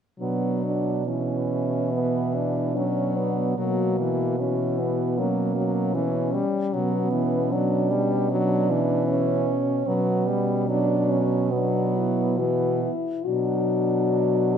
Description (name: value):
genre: classical, lyrical piece for horn quartet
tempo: 66-78 BPM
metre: 4/4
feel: rubato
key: B minor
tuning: A4 = 441 Hz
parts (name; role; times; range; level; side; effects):
- dark French horn; melody; 0.2-14.6 s; C#4 to G4; -29 LUFS; left 8 dB; none
- warm French horn; second line; 0.2-14.6 s; A#3 to D4; -27 LUFS; right 4 dB; none
- clear French horn; accompaniment; 0.2-14.6 s; E3 to G3; -27 LUFS; left 2 dB; none
- mellow French horn; bass; 0.2-14.6 s; B2; -27 LUFS; right 3 dB; none
room: moderate concert hall reverb, RT60 1.8 s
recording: none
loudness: -21 LUFS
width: side -8 dB against mid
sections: 0.2-13.3 A section; 13.3-14.6 B section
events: none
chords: 0.2 Bm; 3.6 F#7/B; 13.3 Bm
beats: | 0.20 1.07 1.93 2.75 | 3.58 4.38 5.17 5.95 | 6.74 7.53 8.31 9.09 | 9.88 10.69 11.53 12.39 | 13.27 14.12